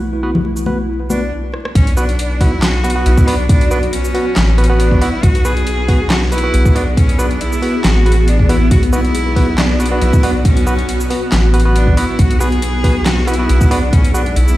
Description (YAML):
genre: deep dubstep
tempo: 138 BPM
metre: 4/4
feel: swing 54% on 16ths, half-time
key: B dorian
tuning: A4 = 439 Hz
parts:
  - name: granular cloud pad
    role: sustained chords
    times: 0.0-14.6 s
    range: B3 to G#4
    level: -22 LUFS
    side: right 1 dB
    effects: built-in reverb
  - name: soft dub sub bass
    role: bass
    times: 0.0-14.6 s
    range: A1 to B1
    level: -15 LUFS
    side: equal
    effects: none
  - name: barky tine electric piano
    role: stabs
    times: 0.2-14.2 s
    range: B3 to B4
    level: -21 LUFS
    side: right 1 dB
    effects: dub echo
  - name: congas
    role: percussion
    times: 0.3-1.2 s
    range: none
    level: -20 LUFS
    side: left 2 dB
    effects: dub echo
  - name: dubstep drum kit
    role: drums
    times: 0.6-14.6 s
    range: handclaps, hi-hat, rim click, shaker, snare drum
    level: -21 LUFS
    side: equal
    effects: overdrive, studio reverb
  - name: bright cello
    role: melody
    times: 1.1-14.6 s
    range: C#4 to G#4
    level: -21 LUFS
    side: equal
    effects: dub echo
  - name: electronic kick drum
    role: drums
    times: 1.8-14.0 s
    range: none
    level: -12 LUFS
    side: equal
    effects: studio reverb
room: digital ambience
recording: played on a big sound system in a bare room, large studio reverb, vinyl crackle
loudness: -11 LUFS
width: side -16 dB against mid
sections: 0.0-1.8 A section; 1.8-14.6 B section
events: filter sweep on tine electric piano 0.0-1.8; filter sweep on ambient pad 0.0-1.8; stop 1.3-1.8; drum fill 1.5; drop 1.8-14.6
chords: 0.0 B5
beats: | 0.01 0.45 0.89 1.32 | 1.75 2.19 2.62 3.06 | 3.49 3.93 4.36 4.80 | 5.23 5.67 6.10 6.54 | 6.97 7.41 7.84 8.28 | 8.71 9.15 9.58 10.02 | 10.45 10.88 11.32 11.75 | 12.19 12.62 13.06 13.49 | 13.93 14.36